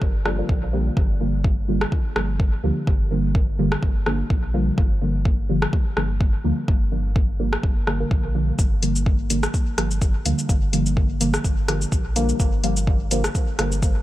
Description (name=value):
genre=dub techno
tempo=126 BPM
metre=4/4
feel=swing 55% on 16ths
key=G minor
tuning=A4 = 440 Hz
part: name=pure sine sub bass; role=bass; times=0.0-14.0 s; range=G1 to D2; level=-24 LUFS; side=equal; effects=sidechain pumping
part: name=electronic kick drum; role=drums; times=0.0-13.9 s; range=none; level=-21 LUFS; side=equal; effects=none
part: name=deep mellow chord stab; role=stabs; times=0.3-13.8 s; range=D3 to Bb3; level=-25 LUFS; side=equal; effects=chorus, phaser, sidechain pumping, dub echo
part: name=soft vintage rhythm box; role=drums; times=0.3-13.9 s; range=cabasa, hi-hat, rim click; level=-28 LUFS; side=left 1 dB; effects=dub echo
room=digital ambience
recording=none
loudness=-19 LUFS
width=side -15 dB against mid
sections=0.0-14.0 A section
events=none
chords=0.0 Gm7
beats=0.02 0.49 | 0.97 1.45 1.92 2.40 | 2.87 3.35 3.83 4.30 | 4.78 5.25 5.73 6.21 | 6.68 7.16 7.63 8.11 | 8.59 9.06 9.54 10.02 | 10.49 10.97 11.45 11.92 | 12.40 12.87 13.35 13.83